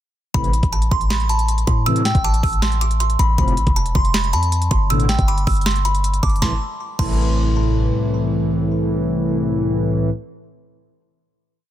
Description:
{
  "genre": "hip hop, trap",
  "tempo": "158 BPM",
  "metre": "4/4",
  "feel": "half-time",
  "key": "A minor",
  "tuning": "A4 = 438 Hz",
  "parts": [
    { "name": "kalimba", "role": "melody", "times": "0.3-7.5 s", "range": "A5 to E6", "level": "-24 LUFS", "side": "right 1 dB", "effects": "ping-pong delay" },
    { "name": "mellow synth brass", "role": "stabs", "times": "0.3-10.1 s", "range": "C2 to F3", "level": "-19 LUFS", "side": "left 1 dB", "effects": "chorus" },
    { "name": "warm 808-style bass", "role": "bass", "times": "0.3-7.9 s", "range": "E1 to A2", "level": "-19 LUFS", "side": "equal", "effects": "none" },
    { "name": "trap drum kit", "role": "drums", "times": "0.3-7.1 s", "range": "crash cymbal, hi-hat, kick drum, snare drum", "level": "-21 LUFS", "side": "equal", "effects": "overdrive" },
    { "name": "delicate synth tine bell", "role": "second line", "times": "0.9-7.5 s", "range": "G5 to D6", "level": "-28 LUFS", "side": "right 2 dB", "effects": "chorus, ping-pong delay" }
  ],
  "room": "little or no reverb",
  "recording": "dense, heavily limited modern master",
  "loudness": "-16 LUFS",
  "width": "side -12 dB against mid",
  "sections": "0.3-6.4 hook; 6.4-9.5 final chord",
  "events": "none",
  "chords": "0.3 Am; 3.4 F; 4.9 Gadd9; 6.4 Am",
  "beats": "| 0.34 0.72 1.10 1.48 | 1.86 2.24 2.62 3.00 | 3.38 3.76 4.14 4.52 | 4.90 5.28 5.66 6.04 | 6.42 6.80 7.18 7.56 | 7.94 8.32 8.70 9.08"
}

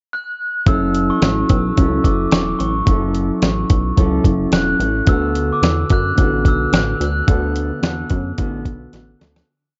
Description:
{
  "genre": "indie pop, bedroom pop",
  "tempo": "109 BPM",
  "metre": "4/4",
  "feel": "swing 55% on 16ths",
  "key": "unclear",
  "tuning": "A4 = 436 Hz",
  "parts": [
    { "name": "glockenspiel with rubber mallets", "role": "melody", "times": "0.1-7.8 s", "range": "C#6 to F#6", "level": "-25 LUFS", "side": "equal", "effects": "lush chorus, analog delay" },
    { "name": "mellow electric guitar", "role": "accompaniment", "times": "0.7-9.8 s", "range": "D3 to A4", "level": "-23 LUFS", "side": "equal", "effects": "lush chorus, warbly pitch drift" },
    { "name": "chorused synth bass", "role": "bass", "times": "0.7-9.4 s", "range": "E1 to F#2", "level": "-23 LUFS", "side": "equal", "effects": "tube saturation" },
    { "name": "dusty soul sampler-style drum kit", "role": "drums", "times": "0.7-9.5 s", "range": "hi-hat, kick drum, snare drum", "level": "-18 LUFS", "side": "equal", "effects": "vintage 12-bit sampler grit" }
  ],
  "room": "little or no reverb",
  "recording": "worn, warbling old tape, cassette tape, warbly pitch drift, nothing above 7.6 kHz",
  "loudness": "-17 LUFS",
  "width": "mono",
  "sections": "0.0-0.7 pickup bar; 0.7-9.5 verse",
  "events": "fade-out 7.3-9.5; drum fill 8.9-9.5",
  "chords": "0.0 N.C.; 0.7 F#m7; 5.1 D6",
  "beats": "0.12 | 0.67 1.22 1.77 2.32 | 2.87 3.42 3.98 4.53 | 5.08 5.63 6.18 6.73 | 7.28 7.83 8.38 8.93"
}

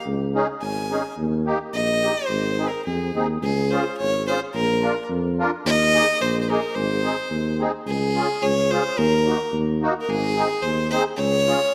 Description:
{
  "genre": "alpine folk, alpine dance band",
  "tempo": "108 BPM",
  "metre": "2/4",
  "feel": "straight",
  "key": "Ab major, Db major from 3.4 s",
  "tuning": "A4 = 440 Hz",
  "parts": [
    { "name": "clear fiddle", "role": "melody", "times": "0.0-11.7 s", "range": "Ab4 to Ab5", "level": "-25 LUFS", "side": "equal", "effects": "none" },
    { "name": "mellow tuba", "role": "bass", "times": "0.1-11.5 s", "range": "Ab1 to F2", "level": "-27 LUFS", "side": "equal", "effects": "none" },
    { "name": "musette accordion", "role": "accompaniment", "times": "0.3-11.6 s", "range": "Bb3 to Bb4", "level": "-29 LUFS", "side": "equal", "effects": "none" }
  ],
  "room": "moderate concert hall reverb, RT60 1.9 s",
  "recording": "none",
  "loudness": "-22 LUFS",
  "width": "mono",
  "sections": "0.0-3.4 A section; 3.4-11.7 B section",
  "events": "none",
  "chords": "0.1 Dbsus2; 1.2 Eb; 2.3 Ab; 3.4 Db; 4.5 Bb; 5.6 Ebsus4; 6.7 Ab; 7.9 Db; 9.0 Ebm; 10.1 Ab; 11.2 Db",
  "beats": "| 0.06 0.62 | 1.18 1.73 | 2.29 2.85 | 3.42 3.98 | 4.54 5.09 | 5.65 6.20 | 6.75 7.30 | 7.86 8.42 | 8.97 9.53 | 10.08 10.63 | 11.18 11.74"
}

